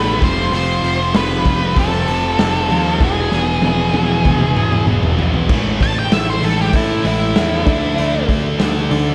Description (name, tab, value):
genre	quiet-loud alternative rock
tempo	97 BPM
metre	4/4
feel	straight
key	unclear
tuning	A4 = 440 Hz
part	octave-fuzz lead guitar	melody	0.0-8.3 s	E4 to A5	-23 LUFS	equal	distortion, slapback echo
part	twelve-string electric guitar	arpeggios	0.0-9.1 s	A2 to A4	-26 LUFS	equal	none
part	scooped high-gain guitar	riff	0.0-9.1 s	E2 to D4	-26 LUFS	equal	distortion, slapback echo
part	thick fuzz guitar	riff	0.0-9.1 s	E2 to D4	-26 LUFS	equal	distortion, slapback echo
part	fuzz picked electric bass	bass	0.0-9.1 s	E1 to A2	-24 LUFS	equal	overdrive
part	raw garage drum kit	drums	0.2-9.1 s	crash cymbal, hi-hat, kick drum, snare drum, toms	-21 LUFS	equal	none
room	moderate lush hall reverb, RT60 2.7 s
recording	big arena sound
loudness	-16 LUFS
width	mono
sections	0.0-5.5 A section; 5.5-9.1 B section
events	drum fill 3.0-5.5; lead electric guitar solo 5.5-9.1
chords	0.2 Fsus2; 3.0 E; 5.5 A5; 7.7 D5